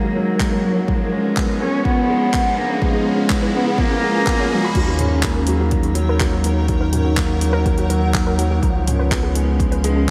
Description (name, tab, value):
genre	piano and strings electronica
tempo	124 BPM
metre	4/4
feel	straight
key	unclear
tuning	A4 = 440 Hz
part	dark cello	melody	0.0-4.8 s	F#3 to C#4	-24 LUFS	equal	delay
part	granular cloud pad	sustained chords	0.0-10.1 s	C#4 to F#5	-29 LUFS	equal	built-in reverb, sidechain pumping
part	warbly dusty pluck	arpeggios	0.0-10.0 s	F#4 to B5	-32 LUFS	equal	chorus, sidechain pumping, delay
part	dark concert grand piano	riff	0.0-10.1 s	D#3 to C#4	-25 LUFS	equal	subtle chorus, delay
part	riser	sound effects	1.1-4.8 s	none	-34 LUFS	equal	none
part	deep house drum kit	drums	0.4-9.9 s	crash cymbal, handclaps, hi-hat, toms	-30 LUFS	equal	overdrive
part	electronic kick drum	drums	0.4-10.1 s	none	-24 LUFS	equal	overdrive
part	warm sub bass	bass	4.8-10.1 s	C#2 to D#2	-22 LUFS	equal	sidechain pumping
room	wet cathedral reverb, RT60 5.0 s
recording	dreamy mix soaked in reverb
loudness	-18 LUFS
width	mono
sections	0.0-4.8 A section; 4.8-10.1 B section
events	build-up 0.0-4.8; filter sweep on ambient pad 0.0-4.8; riser 1.1-4.8; drop 4.8-10.1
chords	0.0 D#m7; 0.9 C#7; 4.8 D#m7; 8.6 C#7